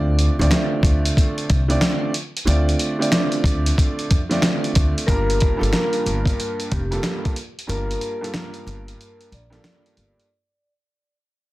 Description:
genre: hip hop, boom-bap hip-hop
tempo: 92 BPM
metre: 4/4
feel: swing 63% on 16ths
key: G minor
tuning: A4 = 440 Hz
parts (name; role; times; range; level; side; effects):
- warm upright piano; accompaniment; 0.0-10.2 s; G2 to D5; -24 LUFS; right 2 dB; cassette tape, high-pass filter, low-pass filter
- upright bass; bass; 0.0-10.1 s; F1 to F2; -21 LUFS; equal; none
- dusty soul sampler-style drum kit; drums; 0.2-10.3 s; hi-hat, kick drum, snare drum; -21 LUFS; equal; none
- vibraphone with medium mallets; melody; 5.1-10.3 s; G4 to D5; -28 LUFS; left 2 dB; high-pass filter, low-pass filter, digital delay
room: light reverb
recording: dense, heavily limited modern master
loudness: -18 LUFS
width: side -18 dB against mid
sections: 0.0-5.1 A section; 5.1-10.3 B section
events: fade-out 5.1-10.3; break 7.7-10.3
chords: 0.0 Dm7; 5.1 Gm7

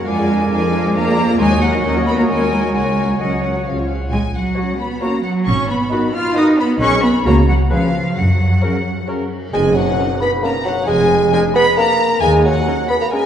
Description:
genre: cinematic, playful, whimsical film cue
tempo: 133 BPM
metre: 3/4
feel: straight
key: F# major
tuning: A4 = 437 Hz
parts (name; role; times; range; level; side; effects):
- dark chamber violin section; melody; 0.0-13.3 s; C#5 to B5; -25 LUFS; left 2 dB; none
- bright clarinet; second line; 0.0-9.2 s; F#4 to F#5; -29 LUFS; left 2 dB; none
- clear oboe; second line; 0.0-9.2 s; A#4 to D5; -29 LUFS; equal; none
- rich studio violin section; second line; 0.0-13.3 s; E#5 to E#6; -26 LUFS; left 2 dB; none
- mellow bassoon; accompaniment; 0.0-13.3 s; C#3 to B3; -20 LUFS; right 1 dB; none
- warm symphonic viola section; accompaniment; 0.0-13.2 s; C#4 to D#5; -27 LUFS; equal; none
- warm chamber cello section; bass; 0.0-12.6 s; D#2 to E#4; -19 LUFS; right 1 dB; none
- bright concert flute; second line; 0.1-9.1 s; E#5 to E#6; -25 LUFS; left 1 dB; none
- rich studio double bass section; bass; 0.1-12.6 s; E#1 to F#2; -20 LUFS; right 1 dB; none
- dark French horn section; sustained chords; 0.5-9.2 s; C#4 to B4; -26 LUFS; left 3 dB; none
- cymbal swell and tam-tam; percussion; 6.8-11.3 s; none; -29 LUFS; left 1 dB; none
- celesta; melody; 9.5-13.3 s; F#5 to B5; -25 LUFS; left 5 dB; none
room: wet scoring stage reverb, RT60 2.0 s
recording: heard from further back in the room, nothing above 10.5 kHz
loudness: -13 LUFS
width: side -9 dB against mid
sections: 0.0-9.5 A section; 9.5-13.3 B section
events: band accent 9.5-10.0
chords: 0.1 A#7/E#; 1.4 D#m7; 2.7 F#/C#; 3.7 C#; 4.1 F#/A#; 5.5 G#m7; 6.8 G#m/B; 7.3 F#/C#; 7.7 C#7; 8.2 F#; 10.9 A#7(no3)/E#; 12.2 D#m7

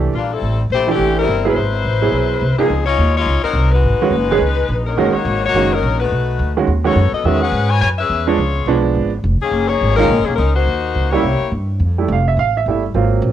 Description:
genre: jazz, big band swing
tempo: 211 BPM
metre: 4/4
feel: swing 59% on 8ths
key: Db major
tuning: A4 = 438 Hz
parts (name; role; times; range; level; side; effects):
- bright upright piano; accompaniment; 0.0-13.3 s; Db2 to F5; -18 LUFS; right 7 dB; cassette tape, plate reverb
- upright bass; bass; 0.0-13.3 s; Eb1 to G#2; -17 LUFS; equal; none
- edgy saxophone section; melody; 0.2-11.5 s; Eb3 to G#5; -18 LUFS; left 6 dB; cassette tape, plate reverb
room: moderate studio reverb, RT60 0.6 s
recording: home recording on cassette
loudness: -14 LUFS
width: side -11 dB against mid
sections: 0.0-2.7 A section; 2.7-11.8 B section; 11.8-13.3 C section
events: upright piano solo 11.8-13.3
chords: 0.4 C13; 1.6 Ab7alt; 2.7 Dbmaj9; 3.8 Abm7; 4.4 Dbsus2; 5.0 Gb6; 6.1 Cb7; 7.2 E69; 8.4 Db7b9; 9.5 Gb69; 10.7 Ebm7; 11.2 C7b9; 11.8 Fmaj9

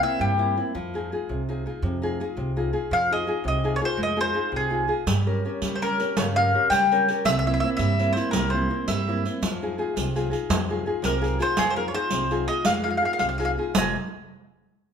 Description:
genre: italian folk, Italian serenade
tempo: 111 BPM (dotted quarters)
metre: 6/8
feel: straight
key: F minor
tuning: A4 = 445 Hz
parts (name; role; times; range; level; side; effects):
- mandolin; melody; 0.0-0.6, 2.9-14.0 s; G4 to Ab5; -24 LUFS; left 1 dB; none
- nylon-string guitar; accompaniment; 0.0-13.9 s; F2 to Eb5; -27 LUFS; left 1 dB; none
- upright bass; bass; 0.2-13.9 s; F1 to Db3; -29 LUFS; right 1 dB; none
- riq; percussion; 5.1-13.9 s; none; -28 LUFS; right 1 dB; none
room: moderate large studio reverb, RT60 1.2 s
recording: band playing live in one room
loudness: -22 LUFS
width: side -7 dB against mid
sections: 0.0-13.8 A section; 13.8-14.8 B section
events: none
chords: 0.0 C7; 0.7 Fm7; 5.1 Gdim; 7.3 C7; 9.4 Fm7

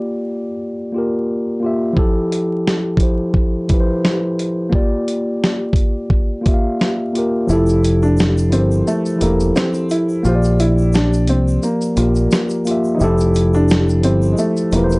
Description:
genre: lo-fi hip hop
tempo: 87 BPM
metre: 4/4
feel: swing 55% on 16ths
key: F major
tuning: A4 = 440 Hz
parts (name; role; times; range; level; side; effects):
- mellow tine electric piano; accompaniment; 0.0-15.0 s; F3 to F5; -18 LUFS; equal; cassette tape
- dusty soul sampler-style drum kit; drums; 2.0-15.0 s; hi-hat, kick drum, shaker, snare drum; -17 LUFS; equal; none
- dark upright piano; melody; 7.5-15.0 s; Ab3 to F4; -20 LUFS; equal; none
- deep dub fingered electric bass; bass; 7.5-15.0 s; E1 to C2; -16 LUFS; equal; none
- egg shaker; percussion; 7.5-15.0 s; none; -42 LUFS; right 1 dB; none
room: light reverb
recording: dry, gritty hardware recording, vinyl crackle, nothing above 10.7 kHz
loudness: -14 LUFS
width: side -28 dB against mid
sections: 0.0-7.5 A section; 7.5-15.0 B section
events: kick muted 7.5-15.0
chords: 0.0 Bb6; 2.0 Fmaj9; 4.7 Bb6; 7.5 Fmaj9; 10.2 Bb6; 13.0 Fmaj9

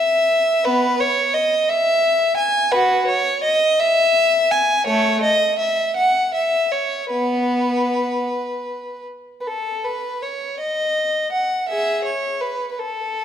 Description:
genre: classical, baroque-style suite movement for unaccompanied violin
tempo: 48-61 BPM (dotted quarters)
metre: 6/8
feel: rubato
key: E major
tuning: A4 = 440 Hz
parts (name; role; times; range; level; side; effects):
- rich violin; solo; 0.0-13.2 s; A3 to G#5; -17 LUFS; equal; none
room: wet recital hall reverb, RT60 1.6 s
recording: dark, warm production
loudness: -17 LUFS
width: side -9 dB against mid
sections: 0.0-9.5 A section; 9.5-13.2 B section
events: none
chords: none

